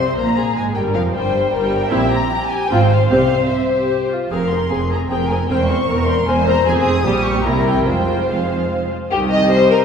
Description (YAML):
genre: quick classical-period movement for string orchestra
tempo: 152 BPM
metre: 3/4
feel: rubato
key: F minor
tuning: A4 = 440 Hz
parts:
  - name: rich studio violin section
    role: melody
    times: 0.0-9.8 s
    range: E5 to Eb6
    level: -24 LUFS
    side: left 3 dB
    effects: none
  - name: rich studio violin section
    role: second line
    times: 0.0-9.8 s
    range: G4 to Eb5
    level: -19 LUFS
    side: left 3 dB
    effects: none
  - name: rich studio viola section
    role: accompaniment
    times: 0.0-9.8 s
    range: Eb3 to Bb4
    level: -22 LUFS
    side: right 1 dB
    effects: none
  - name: rich studio double bass section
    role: bass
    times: 0.0-9.8 s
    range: E1 to C2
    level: -23 LUFS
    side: right 3 dB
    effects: none
  - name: warm studio cello section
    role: bass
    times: 0.0-9.8 s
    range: C2 to C3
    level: -22 LUFS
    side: right 2 dB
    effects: none
room: wet scoring stage reverb, RT60 1.8 s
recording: heard from further back in the room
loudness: -15 LUFS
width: side -7 dB against mid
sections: 0.0-9.1 A section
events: none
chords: 0.0 Fm (rootless); 0.8 Fsus24; 1.9 C7/Bb; 2.7 Fm/Ab; 3.1 C; 4.3 Fm; 5.5 C7/E; 6.7 Fm; 7.1 Gdim/Bb; 7.5 C7; 7.9 Fm; 9.1 Cm